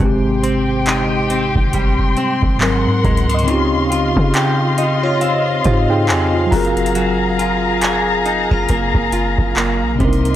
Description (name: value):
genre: contemporary R&B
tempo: 69 BPM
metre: 4/4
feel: swing 58% on 16ths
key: Ab major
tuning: A4 = 440 Hz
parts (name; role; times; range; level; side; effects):
- mellow tine electric piano; accompaniment; 0.0-10.4 s; Ab2 to Bb5; -19 LUFS; equal; medium stereo tremolo
- muted studio string section; sustained chords; 0.0-10.4 s; F4 to C6; -20 LUFS; left 4 dB; none
- direct-recorded clean electric guitar; arpeggios; 0.0-10.4 s; Ab2 to Ab4; -22 LUFS; right 2 dB; lush chorus, analog delay
- warm 808-style bass; bass; 0.0-10.4 s; Gb1 to Db3; -20 LUFS; equal; none
- booming analog drum machine; drums; 0.0-10.3 s; handclaps, hi-hat, kick drum; -20 LUFS; equal; none
- soft round pluck; texture; 0.4-10.4 s; G4 to Eb5; -30 LUFS; equal; none
room: little or no reverb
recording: dry, gritty hardware recording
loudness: -14 LUFS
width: side -12 dB against mid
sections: 0.0-10.4 A section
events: tine electric piano fill 4.3-7.0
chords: 0.0 Abmaj7; 2.6 Ab9; 3.5 Dbmaj9#11; 6.5 Gbmaj9